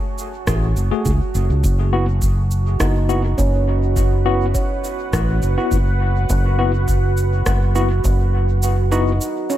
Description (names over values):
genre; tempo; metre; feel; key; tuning
ambient dub; 103 BPM; 4/4; straight; unclear; A4 = 441 Hz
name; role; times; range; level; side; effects
deep dark ambient pad; sustained chords; 0.0-9.6 s; F#4 to A5; -26 LUFS; right 4 dB; chorus, built-in reverb
electronic cabasa and rim click; drums; 0.2-9.6 s; none; -28 LUFS; right 1 dB; overdrive, studio reverb, dub echo
fingered electric bass; bass; 0.5-9.2 s; F#1 to C#2; -17 LUFS; equal; none
electronic kick drum; drums; 0.5-8.2 s; none; -22 LUFS; equal; overdrive, studio reverb
tine electric piano; stabs; 0.9-9.1 s; A3 to G#4; -25 LUFS; left 4 dB; medium stereo tremolo, low-pass filter, dub echo
handpan; arpeggios; 2.8-9.6 s; C#4 to C#5; -26 LUFS; right 2 dB; dub echo
room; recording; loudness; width
little or no reverb; none; -16 LUFS; side -13 dB against mid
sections
0.0-9.6 A section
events
fade-in on ambient pad 0.0-9.6; kick drops out 8.6-9.6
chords
0.0 F#madd9; 1.6 Esus2/F#